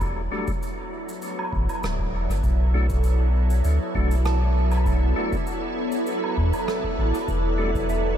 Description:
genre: ambient dub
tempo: 99 BPM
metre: 4/4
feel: swing 54% on 16ths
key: unclear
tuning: A4 = 440 Hz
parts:
  - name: soft additive organ-like pad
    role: sustained chords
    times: 0.0-8.2 s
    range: F#3 to D5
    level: -28 LUFS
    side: right 1 dB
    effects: ensemble chorus, built-in reverb, phaser
  - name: warm sub bass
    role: bass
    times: 0.0-8.2 s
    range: D1 to E2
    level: -21 LUFS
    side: equal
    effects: tube saturation
  - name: cabasa, woodblock and rim click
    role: drums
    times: 0.0-8.0 s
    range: none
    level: -35 LUFS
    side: right 1 dB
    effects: dub echo
  - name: electronic kick drum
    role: drums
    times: 0.0-7.9 s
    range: none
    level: -30 LUFS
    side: equal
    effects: none
  - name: percussive tonewheel organ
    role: stabs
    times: 0.3-7.7 s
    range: G3 to F#4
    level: -34 LUFS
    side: left 3 dB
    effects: chorus vibrato, fast rotary speaker, dub echo
  - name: soft synth bell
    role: arpeggios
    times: 4.3-8.2 s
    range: A4 to A5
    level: -33 LUFS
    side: right 2 dB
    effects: chorus, phaser, dub echo
room: light reverb, small room ambience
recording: none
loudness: -21 LUFS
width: side -10 dB against mid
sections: 0.0-8.2 A section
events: fade-in on ambient pad 0.0-8.2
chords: 0.0 Em11; 2.4 Bm7; 7.3 Em11

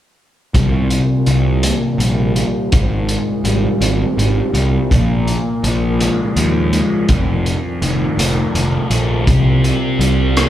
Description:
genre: psychedelic rock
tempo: 55 BPM (dotted quarters)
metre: 6/8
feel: straight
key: C minor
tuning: A4 = 439 Hz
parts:
  - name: fuzz picked electric bass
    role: bass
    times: 0.5-10.4 s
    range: F1 to Eb2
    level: -17 LUFS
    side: equal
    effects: overdrive
  - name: hand-pumped harmonium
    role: drone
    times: 0.5-10.5 s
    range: C2 to Bb2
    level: -24 LUFS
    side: right 1 dB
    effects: none
  - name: crunchy breakbeat drum kit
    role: drums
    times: 0.5-10.5 s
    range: hi-hat, kick drum, rim click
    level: -19 LUFS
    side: equal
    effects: none
  - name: thick fuzz guitar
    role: riff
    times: 0.6-10.5 s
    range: F2 to C4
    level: -18 LUFS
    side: left 1 dB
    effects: distortion, phaser, low-pass filter
room: wet large studio reverb, RT60 0.9 s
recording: band playing live in one room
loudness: -13 LUFS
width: side -12 dB against mid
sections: 0.5-10.5 A section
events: filter sweep on distorted electric guitar 0.5-10.5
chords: 0.5 C5; 2.7 Abmaj7; 4.9 Bb5; 7.1 F7; 9.3 C5

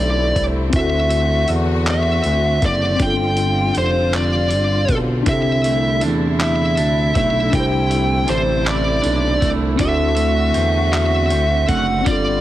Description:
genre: slow six-eight R&B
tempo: 53 BPM (dotted quarters)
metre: 6/8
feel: straight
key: C major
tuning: A4 = 440 Hz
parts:
  - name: high-gain lead guitar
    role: melody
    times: 0.0-12.4 s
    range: C5 to G5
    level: -20 LUFS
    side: equal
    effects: distortion
  - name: mellow tine electric piano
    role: accompaniment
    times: 0.0-12.4 s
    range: C4 to C5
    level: -24 LUFS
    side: left 3 dB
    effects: medium stereo tremolo
  - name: rich studio string section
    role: sustained chords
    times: 0.0-12.4 s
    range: D3 to F#4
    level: -26 LUFS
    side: left 1 dB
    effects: none
  - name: smooth synth bass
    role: bass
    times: 0.0-12.4 s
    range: F1 to E2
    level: -20 LUFS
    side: equal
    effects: none
  - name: dusty soul sampler-style drum kit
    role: drums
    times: 0.4-12.2 s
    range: handclaps, hi-hat, kick drum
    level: -24 LUFS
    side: equal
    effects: none
  - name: electric guitar at the edge of break-up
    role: second line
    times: 5.3-12.4 s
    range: C3 to F#4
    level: -23 LUFS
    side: right 6 dB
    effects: none
room: little or no reverb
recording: heavily compressed radio sound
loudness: -15 LUFS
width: side -14 dB against mid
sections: 0.0-12.4 A section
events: none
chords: 0.0 C69; 0.7 D7; 3.0 G7sus4; 5.3 C69; 9.8 D7

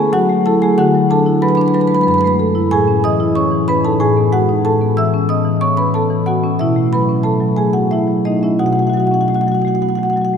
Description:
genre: classical, contemporary piece for solo marimba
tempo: 92 BPM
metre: 3/4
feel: uneven beats, rubato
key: unclear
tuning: A4 = 442 Hz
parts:
  - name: marimba with medium mallets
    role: solo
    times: 0.0-10.4 s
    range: F#2 to E6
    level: -12 LUFS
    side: left 1 dB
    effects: none
room: wet cathedral reverb, RT60 5.0 s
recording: recorded in a church or concert hall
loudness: -12 LUFS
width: side -7 dB against mid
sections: 0.0-10.4 A section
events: none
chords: 0.1 F#m9; 0.8 D69; 2.1 F#m7; 2.7 Amaj7; 4.0 G#m7/A; 4.7 A69; 6.6 B9sus4

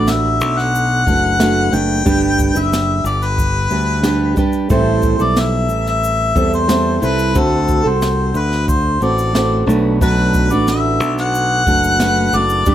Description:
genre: acoustic pop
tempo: 91 BPM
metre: 4/4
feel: straight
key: unclear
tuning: A4 = 440 Hz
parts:
  - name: warm harmonica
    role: melody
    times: 0.0-12.7 s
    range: A4 to G5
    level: -18 LUFS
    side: left 2 dB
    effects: none
  - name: fingerpicked steel-string acoustic guitar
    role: accompaniment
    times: 0.0-12.7 s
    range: A2 to B4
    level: -18 LUFS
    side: right 2 dB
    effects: none
  - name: modern bright fingered electric bass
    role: bass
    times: 0.0-12.7 s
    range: F#1 to E2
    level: -18 LUFS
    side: left 1 dB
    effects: none
  - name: jazz brush drum kit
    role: drums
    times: 0.1-12.7 s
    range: kick drum, shaker, snare drum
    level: -21 LUFS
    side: equal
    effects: none
room: light reverb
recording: none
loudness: -13 LUFS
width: side -11 dB against mid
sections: 0.0-12.7 A section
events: none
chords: 0.0 Bm7; 2.1 G; 4.7 Am7; 7.4 D7; 9.7 Bm7

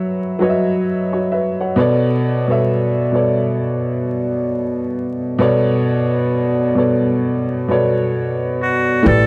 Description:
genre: lo-fi hip hop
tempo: 66 BPM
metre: 4/4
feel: swing 59% on 16ths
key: B minor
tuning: A4 = 441 Hz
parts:
  - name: clear upright piano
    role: accompaniment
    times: 0.0-9.3 s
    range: B2 to F#5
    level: -18 LUFS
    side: equal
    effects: cassette tape, low-pass filter
  - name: trumpet with metal mute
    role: melody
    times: 8.6-9.3 s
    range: F#4 to A4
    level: -19 LUFS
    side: equal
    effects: low-pass filter
  - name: upright bass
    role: bass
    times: 9.1-9.3 s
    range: A1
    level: -16 LUFS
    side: equal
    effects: none
  - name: cajon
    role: drums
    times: 9.1-9.2 s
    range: none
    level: -35 LUFS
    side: equal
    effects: none
room: moderate studio reverb, RT60 0.6 s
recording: worn, warbling old tape, cassette tape, vinyl crackle, warbly pitch drift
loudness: -18 LUFS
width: mono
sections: 0.0-9.0 A section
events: kick muted 9.0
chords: 0.0 F#7sus4; 1.8 Bm7

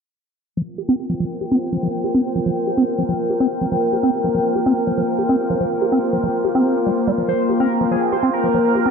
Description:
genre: trance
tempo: 143 BPM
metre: 4/4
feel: straight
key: unclear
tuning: A4 = 440 Hz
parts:
  - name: evolving wavetable pad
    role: sustained chords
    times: 1.3-8.9 s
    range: Bb3 to G5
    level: -22 LUFS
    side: left 2 dB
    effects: chorus, built-in reverb
  - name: liquid acid bass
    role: riff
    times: 0.6-8.9 s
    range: F3 to G4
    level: -20 LUFS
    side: right 1 dB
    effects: chorus, auto-pan, tape echo
  - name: airy breathy pad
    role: texture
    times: 0.8-8.9 s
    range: F4 to G5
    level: -24 LUFS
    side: right 1 dB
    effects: chorus
  - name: overdriven synth lead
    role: melody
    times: 7.3-8.9 s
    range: Ab4 to C5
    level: -20 LUFS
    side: right 1 dB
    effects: phaser, dub echo
room: wet lush hall reverb, RT60 2.5 s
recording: low-pass filter, nothing above 7.9 kHz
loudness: -17 LUFS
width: side -6 dB against mid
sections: 0.6-8.9 A section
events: filter sweep on acid bass 0.6-8.9; filter sweep on ambient pad 0.6-8.9; filter sweep 0.6-8.9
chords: 0.6 F5

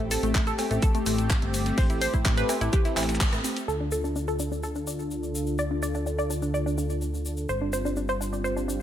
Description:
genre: progressive house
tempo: 126 BPM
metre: 4/4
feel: straight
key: D minor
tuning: A4 = 440 Hz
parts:
  - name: warm analog pad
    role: sustained chords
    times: 0.0-8.8 s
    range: D3 to A4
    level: -31 LUFS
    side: equal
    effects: chorus, sidechain pumping
  - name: analog pluck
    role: arpeggios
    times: 0.0-8.8 s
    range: A3 to D5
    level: -30 LUFS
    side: equal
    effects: chorus, phaser, sidechain pumping, digital delay
  - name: fat analog bass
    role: bass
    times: 0.0-8.8 s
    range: G1 to A2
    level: -31 LUFS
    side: equal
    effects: sidechain pumping
  - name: dusty soul sampler-style drum kit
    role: drums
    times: 0.1-3.7 s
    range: hi-hat, shaker, snare drum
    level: -39 LUFS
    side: equal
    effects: none
  - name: house drum kit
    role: drums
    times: 0.1-3.7 s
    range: handclaps, hi-hat, rim click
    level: -32 LUFS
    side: equal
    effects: sidechain pumping on hats
  - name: tube shaker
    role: percussion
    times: 0.1-8.8 s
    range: none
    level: -39 LUFS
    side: left 3 dB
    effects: none
  - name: electronic kick drum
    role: drums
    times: 0.3-3.3 s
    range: none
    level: -24 LUFS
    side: equal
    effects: none
  - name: cowbell and congas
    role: percussion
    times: 0.6-3.5 s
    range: none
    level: -36 LUFS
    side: right 5 dB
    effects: sidechain pumping on perc
room: light reverb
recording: none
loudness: -24 LUFS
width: side -11 dB against mid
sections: 0.0-3.7 A section; 3.7-8.8 B section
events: filter sweep on synth arpeggio sound 0.0-3.7, 3.7-8.8; band accent 3.2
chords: 0.0 Am7; 3.7 Dm; 7.5 G7sus4

